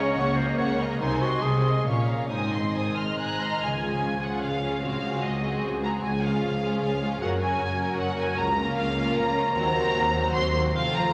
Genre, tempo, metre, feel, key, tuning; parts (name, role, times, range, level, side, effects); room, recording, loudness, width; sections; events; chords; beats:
classical, dramatic, fast romantic movement for symphony orchestra; 132-156 BPM; 3/4; rubato; Db major; A4 = 440 Hz
warm symphonic violin section; melody; 0.0-11.1 s; Eb5 to Gb6; -32 LUFS; equal
clear clarinet; second line; 0.0-3.2 s; Db4 to Db5; -32 LUFS; equal
warm symphonic violin section; second line; 0.0-11.1 s; F4 to C6; -35 LUFS; equal
rich symphonic viola section; accompaniment; 0.0-11.1 s; Gb3 to Db4; -36 LUFS; equal
concert harp; arpeggios; 0.0-11.1 s; F2 to Ab5; -33 LUFS; equal
rich symphonic double bass section; bass; 0.0-11.1 s; F1 to Eb2; -35 LUFS; equal
warm symphonic cello section; bass; 0.0-11.1 s; Db2 to Db3; -34 LUFS; equal
mellow French horn section; sustained chords; 3.6-11.1 s; F3 to C5; -37 LUFS; equal
wet scoring stage reverb, RT60 1.7 s; -26 LUFS; mono
0.0-3.6 A section; 3.6-11.1 B section
0.0 Ebm7/Db; 1.0 Ab/C; 1.9 Bbm; 2.3 Ab; 3.6 Db; 4.8 Ab7/Db; 6.0 Db; 7.2 Gb; 8.4 Bbm/Db; 9.6 Cm7b5/Eb
0.18 0.59 | 1.01 1.44 1.87 | 2.31 2.76 3.20 | 3.64 4.05 4.45 | 4.85 5.24 5.64 | 6.03 6.43 6.82 | 7.21 7.60 7.99 | 8.38 8.77 9.16 | 9.55 9.95 10.35 | 10.76